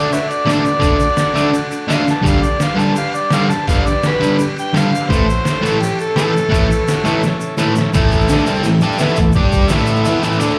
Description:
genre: garage rock duo or trio.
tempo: 169 BPM.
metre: 4/4.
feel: straight.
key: unclear.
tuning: A4 = 439 Hz.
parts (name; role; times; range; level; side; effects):
overdriven harmonica; melody; 0.0-7.2 s; F#4 to A5; -21 LUFS; equal; slapback echo.
combo organ; sustained chords; 0.0-10.6 s; A3 to G5; -27 LUFS; equal; spring reverb.
fuzz guitar; riff; 0.0-10.6 s; G2 to G4; -18 LUFS; equal; distortion, slapback echo.
trip hop sampler-style drum kit; drums; 0.1-10.5 s; crash cymbal, hi-hat, kick drum, snare drum; -21 LUFS; equal; none.
tube shaker; percussion; 0.1-10.5 s; none; -37 LUFS; equal; none.
room: light reverb.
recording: live gig heard through the venue's PA, club reverb.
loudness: -15 LUFS.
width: mono.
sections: 0.0-7.9 A section; 7.9-10.6 B section.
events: harmonica solo 0.0-7.9; drum fill 2.1, 7.2-7.9; kick and snare drop out 10.4.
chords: 0.0 D; 2.2 G; 5.1 A; 7.9 A5; 9.4 G5; 9.7 A5.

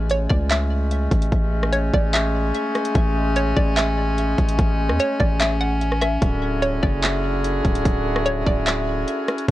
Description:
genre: hip hop, atmospheric cloud-rap.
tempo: 147 BPM.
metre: 4/4.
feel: half-time.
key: A major.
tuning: A4 = 441 Hz.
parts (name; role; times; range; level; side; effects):
clear woodwind section; sustained chords; 0.0-9.5 s; D3 to G#4; -24 LUFS; left 1 dB; sidechain pumping.
long sustained 808-style bass; bass; 0.0-9.5 s; D1 to E2; -22 LUFS; equal; none.
hollow square pluck; melody; 0.1-9.1 s; C#5 to F#5; -26 LUFS; equal; chorus, digital delay.
trap drum kit; drums; 0.1-9.5 s; handclaps, hi-hat, kick drum, rim click; -22 LUFS; equal; overdrive.
room: little or no reverb.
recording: worn, warbling old tape, cassette tape, warbly pitch drift.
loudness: -18 LUFS.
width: side -15 dB against mid.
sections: 0.0-9.5 A section.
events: none.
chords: 0.0 Amaj7; 6.2 Dmaj9#11.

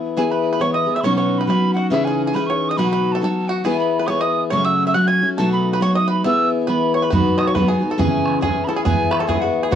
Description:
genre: celtic folk, Celtic polka.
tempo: 138 BPM.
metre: 2/4.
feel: swing 60% on 8ths.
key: E major.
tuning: A4 = 440 Hz.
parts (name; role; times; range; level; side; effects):
picked steel-string acoustic guitar; accompaniment; 0.0-9.8 s; F#2 to G#4; -18 LUFS; left 2 dB; none.
mellow hollow wooden whistle; melody; 0.2-9.8 s; E5 to G#6; -22 LUFS; right 3 dB; none.
bluegrass banjo; second line; 0.2-9.8 s; E4 to G#5; -27 LUFS; right 3 dB; none.
bodhran; percussion; 7.1-9.8 s; none; -22 LUFS; right 2 dB; none.
room: moderate studio reverb, RT60 0.6 s.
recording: worn, warbling old tape, cassette tape, warbly pitch drift.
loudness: -16 LUFS.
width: side -9 dB against mid.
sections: 0.2-7.1 A section; 7.1-9.8 B section.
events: none.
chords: 0.2 E; 1.0 Badd9; 1.9 C#madd9; 2.8 Badd9; 3.6 E; 4.5 F#m; 5.4 B7; 6.2 E; 7.1 B; 8.0 C#m; 8.9 E.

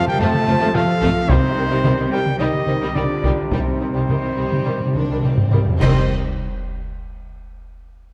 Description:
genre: cinematic, epic orchestral film score.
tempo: 104-111 BPM.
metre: 4/4.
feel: straight.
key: C dorian.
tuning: A4 = 441 Hz.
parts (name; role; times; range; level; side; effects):
mellow hollow large flute ensemble; second line; 0.0-6.1 s; Eb4 to C5; -33 LUFS; equal; none.
dark trombone section; sustained chords; 0.0-6.0 s; C3 to G3; -33 LUFS; equal; none.
mellow French horn section; sustained chords; 0.0-6.1 s; C4 to A4; -31 LUFS; equal; none.
mellow trumpet; stabs; 0.0-6.1 s; C5 to A5; -26 LUFS; equal; none.
rich symphonic cello section; bass; 0.0-6.1 s; C3 to C4; -28 LUFS; equal; none.
taiko ensemble; drums; 0.1-5.9 s; none; -24 LUFS; equal; none.
warm symphonic violin section; melody; 0.2-6.1 s; G3 to Eb5; -32 LUFS; equal; none.
clear symphonic violin section; second line; 0.2-6.1 s; G3 to C4; -36 LUFS; equal; none.
rich symphonic viola section; accompaniment; 0.2-6.1 s; Eb3 to F3; -32 LUFS; equal; none.
warm symphonic double bass section; bass; 0.2-6.1 s; C2 to F2; -26 LUFS; equal; none.
timpani; percussion; 1.3-6.1 s; C3; -28 LUFS; equal; none.
clash cymbals and concert bass drum; percussion; 5.8-6.9 s; none; -29 LUFS; equal; none.
room: moderate scoring stage reverb, RT60 1.7 s.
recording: dark, warm production.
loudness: -19 LUFS.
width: mono.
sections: 0.0-5.8 A section; 5.8-8.1 B section.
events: timpani fill 3.5-5.8; drum fill 5.2-5.8; band accent 5.8-6.4.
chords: 0.0 F; 1.3 Cm.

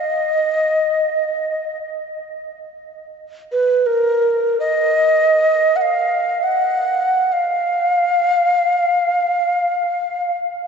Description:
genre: world meditative, free-time meditation music.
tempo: free time.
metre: none.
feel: none.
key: Eb hirajoshi.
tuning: A4 = 442 Hz.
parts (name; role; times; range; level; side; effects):
breathy mellow Native American-style cedar flute; solo; 0.0-10.4 s; Bb4 to Gb5; -16 LUFS; equal; diffuse ambient delay.
room: wet cathedral reverb, RT60 5.7 s.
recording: nothing above 7.9 kHz.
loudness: -15 LUFS.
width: side -6 dB against mid.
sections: 0.0-10.7 A section.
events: none.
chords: none.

